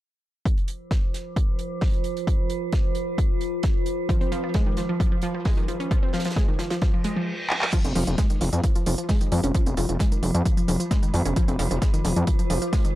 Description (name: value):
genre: driving peak-time techno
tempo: 132 BPM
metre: 4/4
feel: straight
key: F minor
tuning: A4 = 440 Hz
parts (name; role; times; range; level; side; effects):
- metallic inharmonic drone; drone; 0.9-13.0 s; F3; -32 LUFS; right 1 dB; chorus, built-in reverb, sidechain pumping
- damped 70s drum kit; drums; 0.5-12.9 s; hi-hat, snare drum; -39 LUFS; right 2 dB; high-pass filter on hats, high-pass filter on snare, high-pass filter on room
- electronic kick drum; drums; 0.5-12.8 s; none; -22 LUFS; equal; none
- wide unison pluck; riff; 4.1-12.9 s; Eb3 to Db4; -27 LUFS; equal; sidechain pumping, tape echo
- reverse cymbal; sound effects; 7.0-7.7 s; none; -31 LUFS; right 2 dB; none
- techno drum kit; drums; 7.5-12.9 s; crash cymbal, handclaps, hi-hat; -31 LUFS; right 1 dB; sidechain pumping on hats, sidechain pumping on cymbals
- gritty driven synth bass; bass; 7.8-12.6 s; F1 to F2; -24 LUFS; equal; sidechain pumping
room: little or no reverb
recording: dry, gritty hardware recording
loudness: -21 LUFS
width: side -15 dB against mid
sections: 0.5-7.7 A section; 7.7-13.0 B section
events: reverse cymbal 7.0-7.7; drum fill 7.5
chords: 0.5 F5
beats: | 0.46 0.91 1.36 1.82 | 2.27 2.73 3.18 3.64 | 4.09 4.55 5.00 5.46 | 5.91 6.36 6.82 7.27 | 7.73 8.18 8.64 9.09 | 9.55 10.00 10.46 10.91 | 11.36 11.82 12.27 12.73